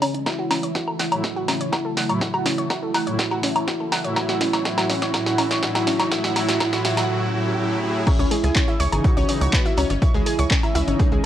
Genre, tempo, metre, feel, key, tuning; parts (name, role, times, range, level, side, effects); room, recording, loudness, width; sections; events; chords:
melodic techno; 123 BPM; 4/4; straight; A4 = 443 Hz
wide unison lead; melody; 0.0-11.3 s; C#4 to F#4; -28 LUFS; right 1 dB; analog chorus, tape echo
evolving wavetable pad; sustained chords; 0.0-11.3 s; C#3 to D#5; -33 LUFS; equal; phaser, built-in reverb, sidechain pumping
analog pluck; arpeggios; 0.0-11.2 s; G#3 to C#6; -26 LUFS; equal; chorus, sidechain pumping, analog delay
punchy analog drum machine; drums; 0.0-11.1 s; crash cymbal, handclaps, hi-hat, snare drum, woodblock; -24 LUFS; equal; high-pass filter on snare, sidechain pumping on hats, high-pass filter on hats, sidechain pumping on perc, high-pass filter on perc, sidechain pumping on cymbals, high-pass filter on cymbals
electronic kick drum; drums; 0.3-11.1 s; -21 LUFS; equal; high-pass filter on kick
riser and swell; sound effects; 3.7-8.1 s; -33 LUFS; right 1 dB
brassy analog pad; stabs; 1.1-11.1 s; A2 to E4; -27 LUFS; equal; chorus, sidechain pumping, analog delay
vintage drum kit; drums; 8.1-11.1 s; hi-hat, snare drum; -41 LUFS; right 1 dB
tight sequencer bass; bass; 8.2-11.2 s; G#1 to C#2; -22 LUFS; equal; sidechain pumping
moderate lush hall reverb, RT60 1.8 s; dry, gritty hardware recording, cassette tape; -19 LUFS; side -11 dB against mid
0.0-8.1 A section; 8.1-11.3 B section
build-up 0.0-8.1; drum fill 0.0-7.1; filter sweep on synth pluck 0.0-8.1; filter sweep on analog synth lead 0.0-8.1; filter sweep on ambient pad 0.0-8.1; swell 7.1-8.1; drop 8.1-11.3
0.3 F#m7; 8.1 C#madd9